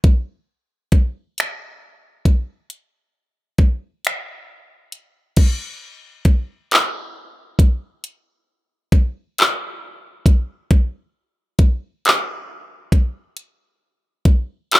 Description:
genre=R&B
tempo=45 BPM (dotted quarters)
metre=6/8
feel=straight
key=none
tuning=none
part: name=smooth R&B drum kit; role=drums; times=0.0-14.8 s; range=crash cymbal, finger snaps, handclaps, hi-hat, kick drum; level=-14 LUFS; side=equal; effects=none
room=little or no reverb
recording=none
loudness=-17 LUFS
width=side -18 dB against mid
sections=0.0-5.4 A section; 5.4-14.8 B section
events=none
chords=none

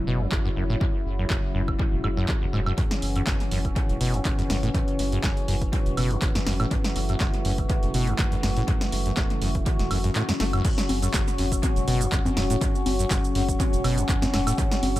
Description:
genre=acid house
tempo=122 BPM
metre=4/4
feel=swing 54% on 16ths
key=F# minor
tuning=A4 = 442 Hz
part: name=warm analog pad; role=sustained chords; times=0.0-15.0 s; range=C#3 to E4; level=-32 LUFS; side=left 1 dB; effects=chorus, sidechain pumping
part: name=saturated sub bass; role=bass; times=0.0-15.0 s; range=E1 to F#1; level=-28 LUFS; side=equal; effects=sidechain pumping
part: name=warbly tape-like pad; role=texture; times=0.0-15.0 s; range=C#4 to C#6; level=-33 LUFS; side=left 1 dB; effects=chorus, built-in reverb, sidechain pumping
part: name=acid bass, saw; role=riff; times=0.1-15.0 s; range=F#1 to A3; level=-28 LUFS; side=equal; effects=tube saturation, lush chorus, cassette tape, sidechain pumping, dub echo
part: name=electronic kick drum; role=drums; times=0.3-14.7 s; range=none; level=-26 LUFS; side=equal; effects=none
part: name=punchy analog drum machine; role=drums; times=0.3-15.0 s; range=congas, crash cymbal, handclaps, hi-hat, shaker, snare drum, woodblock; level=-30 LUFS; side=equal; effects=dub echo
room=light reverb, digital ambience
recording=echo-heavy mix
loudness=-22 LUFS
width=side -15 dB against mid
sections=0.0-10.6 A section; 10.6-15.0 B section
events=kick drops out 10.2-10.6; drop 10.6-15.0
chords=0.0 F#5

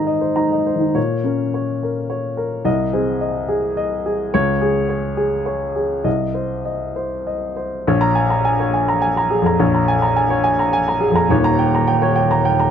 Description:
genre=neoclassical minimalist piano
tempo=98-109 BPM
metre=3/4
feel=rubato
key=Bb dorian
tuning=A4 = 439 Hz
part: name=warm upright piano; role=solo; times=0.0-12.7 s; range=Eb1 to Bb5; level=-16 LUFS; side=equal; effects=none
room=little or no reverb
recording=close, detailed microphones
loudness=-16 LUFS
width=side -8 dB against mid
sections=1.0-7.9 A section; 7.9-12.7 B section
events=none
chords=0.0 Abadd9; 1.0 Bbm; 2.7 Ab/C; 4.3 Db5; 6.1 Cm; 7.9 Bbm7; 11.3 Eb7

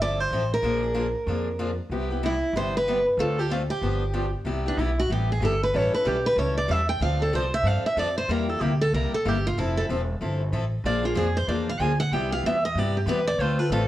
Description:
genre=acoustic string swing (jazz manouche)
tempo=188 BPM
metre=4/4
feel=swing 61% on 8ths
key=C major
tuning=A4 = 440 Hz
part: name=picked steel-string acoustic guitar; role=melody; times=0.0-13.9 s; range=D4 to Ab5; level=-25 LUFS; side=right 1 dB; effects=none
part: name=picked steel-string acoustic guitar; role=accompaniment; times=0.0-13.8 s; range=C3 to A4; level=-29 LUFS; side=left 2 dB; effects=none
part: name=upright bass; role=bass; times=0.0-13.9 s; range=E1 to G2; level=-27 LUFS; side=equal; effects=none
room=moderate studio reverb, RT60 0.9 s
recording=worn, warbling old tape, cassette tape, warbly pitch drift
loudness=-22 LUFS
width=side -14 dB against mid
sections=0.0-4.5 A section; 4.5-13.9 B section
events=steel-string acoustic guitar solo 4.5-13.9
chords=0.0 Fmaj7; 0.6 Bb7; 1.9 Cmaj7; 3.2 Dm7; 3.8 G7; 4.5 Cmaj7; 5.7 A7; 7.0 Dm7; 8.3 C7; 9.6 Fmaj7; 10.8 Bb7; 12.1 Cmaj7

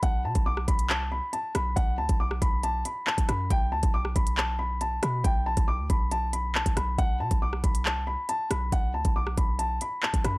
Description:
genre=hip hop, drill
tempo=138 BPM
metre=4/4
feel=half-time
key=B phrygian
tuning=A4 = 440 Hz
part: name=dark baby grand piano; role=melody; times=0.0-10.4 s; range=F#5 to D6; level=-30 LUFS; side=left 1 dB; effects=tape echo
part: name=hard-hitting 808-style bass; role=bass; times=0.0-10.4 s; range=B1 to B2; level=-30 LUFS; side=equal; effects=none
part: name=drill drum kit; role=drums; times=0.0-10.3 s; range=handclaps, hi-hat, kick drum, rim click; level=-26 LUFS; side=equal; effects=none
room=digital ambience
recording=dry, gritty hardware recording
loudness=-24 LUFS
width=side -23 dB against mid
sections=0.0-10.4 A section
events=none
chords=0.0 N.C.; 3.5 B7(no3); 7.0 N.C.

